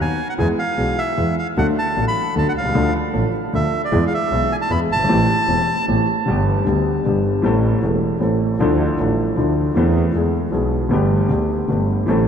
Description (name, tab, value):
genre	tango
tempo	154 BPM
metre	3/4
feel	rubato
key	unclear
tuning	A4 = 445 Hz
part	bandoneon	melody	0.0-5.9 s	D5 to B5	-22 LUFS	right 1 dB	none
part	clear grand piano	accompaniment	0.0-12.3 s	E1 to A4	-18 LUFS	left 1 dB	none
part	rich double bass	bass	0.0-12.3 s	E1 to E2	-22 LUFS	right 1 dB	none
room	wet cathedral reverb, RT60 5.5 s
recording	in a vast, echoing space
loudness	-16 LUFS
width	side -8 dB against mid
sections	0.0-6.3 A section; 6.3-12.3 B section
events	none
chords	0.4 E; 1.6 D; 2.8 Dm; 3.9 E; 5.1 Am7; 6.3 G; 7.4 Am; 8.6 Dmadd9; 9.8 Am/E; 10.1 E; 10.9 Gadd9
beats	0.00 | 0.39 0.79 1.18 | 1.58 1.97 2.37 | 2.76 3.15 3.54 | 3.93 4.32 4.71 | 5.10 5.49 5.89 | 6.28 6.67 7.06 | 7.45 7.83 8.22 | 8.60 8.99 9.37 | 9.76 10.14 10.53 | 10.92 11.31 11.70 | 12.08